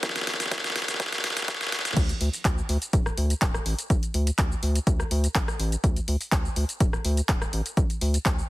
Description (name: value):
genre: progressive house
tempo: 124 BPM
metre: 4/4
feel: straight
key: unclear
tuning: A4 = 440 Hz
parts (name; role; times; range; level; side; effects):
- electronic kick drum; drums; 0.0-8.4 s; none; -24 LUFS; equal; none
- pop drum kit; drums; 0.0-8.5 s; crash cymbal, handclaps, hi-hat, rim click, shaker, snare drum; -28 LUFS; equal; overdrive, sidechain pumping on hats, sidechain pumping on perc, sidechain pumping on cymbals
- round analog bass; bass; 2.0-8.4 s; D1 to D2; -26 LUFS; equal; sidechain pumping
room: little or no reverb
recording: heavily compressed radio sound, multiband compression, high-pass filter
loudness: -23 LUFS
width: side -18 dB against mid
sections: 0.0-2.0 A section; 2.0-8.5 B section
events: build-up 0.0-2.0; drum fill 0.0-2.0; drop 2.0-8.5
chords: none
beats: | 0.03 0.51 1.00 1.48 | 1.97 2.45 2.93 3.42 | 3.90 4.38 4.87 5.35 | 5.84 6.32 6.80 7.29 | 7.77 8.26